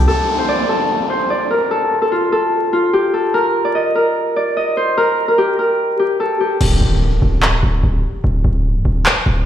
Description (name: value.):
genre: hip hop, trap.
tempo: 147 BPM.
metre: 4/4.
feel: half-time.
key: unclear.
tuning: A4 = 440 Hz.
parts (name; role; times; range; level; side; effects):
Celtic harp; melody; 0.0-8.8 s; F4 to Eb5; -15 LUFS; left 1 dB; low-pass filter, digital delay.
distorted 808-style bass; bass; 0.0-0.1, 6.6-9.5 s; C1 to D1; -14 LUFS; equal; distortion.
downlifter and impact; sound effects; 0.1-3.3, 6.6-8.2 s; none; -23 LUFS; equal; none.
trap drum kit; drums; 6.6-9.2 s; crash cymbal, handclaps; -18 LUFS; equal; none.
room: light reverb.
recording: played on a big sound system in a bare room, stone room reverb, vinyl crackle.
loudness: -14 LUFS.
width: side -10 dB against mid.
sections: 0.1-6.6 A section; 6.6-9.5 B section.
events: hi-hats muted 6.6-9.5; impact 6.6-8.2.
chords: 0.1 N.C.; 6.6 Csus2 (rootless).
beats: | 0.08 0.48 0.89 1.30 | 1.71 2.12 2.52 2.93 | 3.34 3.75 4.16 4.57 | 4.97 5.38 5.79 6.20 | 6.61 7.01 7.42 7.83 | 8.24 8.65 9.06.